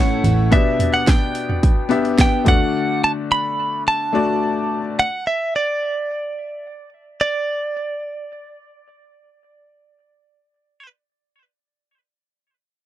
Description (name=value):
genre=piano-driven pop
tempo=108 BPM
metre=4/4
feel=straight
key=D major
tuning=A4 = 440 Hz
part: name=direct-recorded clean electric guitar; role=melody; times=0.0-10.9 s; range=D5 to B5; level=-21 LUFS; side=right 2 dB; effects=none
part: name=bright upright piano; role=accompaniment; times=0.0-5.0 s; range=A2 to E5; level=-21 LUFS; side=left 6 dB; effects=none
part: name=picked plugged-in steel-string acoustic guitar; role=riff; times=0.0-0.5 s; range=A3 to A4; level=-24 LUFS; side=right 10 dB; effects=none
part: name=vintage muted picked electric bass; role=bass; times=0.0-0.5 s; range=A1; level=-18 LUFS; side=equal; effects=none
part: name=house drum kit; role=drums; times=0.2-2.6 s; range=handclaps, hi-hat, kick drum, snare drum, toms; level=-16 LUFS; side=right 1 dB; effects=none
room=light reverb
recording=dry, close 1970s-style studio recording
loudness=-16 LUFS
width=side -12 dB against mid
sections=0.0-7.2 A section; 7.2-9.4 B section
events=none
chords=0.0 A; 0.5 G/B; 2.5 D; 5.0 N.C.